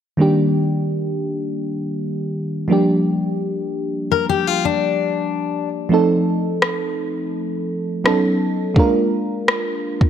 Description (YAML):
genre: contemporary R&B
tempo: 84 BPM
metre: 4/4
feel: straight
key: Eb major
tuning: A4 = 439 Hz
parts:
  - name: mellow FM electric piano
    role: accompaniment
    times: 0.2-10.1 s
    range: Eb3 to Bb4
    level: -18 LUFS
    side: right 1 dB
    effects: chorus
  - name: fingerpicked steel-string acoustic guitar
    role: arpeggios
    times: 4.1-5.7 s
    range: D4 to Bb4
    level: -19 LUFS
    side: left 11 dB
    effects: none
  - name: smooth R&B drum kit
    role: drums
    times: 6.6-10.1 s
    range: kick drum, rim click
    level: -18 LUFS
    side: equal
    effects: vintage 12-bit sampler grit
room: light reverb, digital ambience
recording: none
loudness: -17 LUFS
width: side -9 dB against mid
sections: 0.2-10.1 A section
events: none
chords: 0.2 Ebmaj7; 2.7 Gm7; 5.9 F7; 8.0 B9; 8.8 Bb7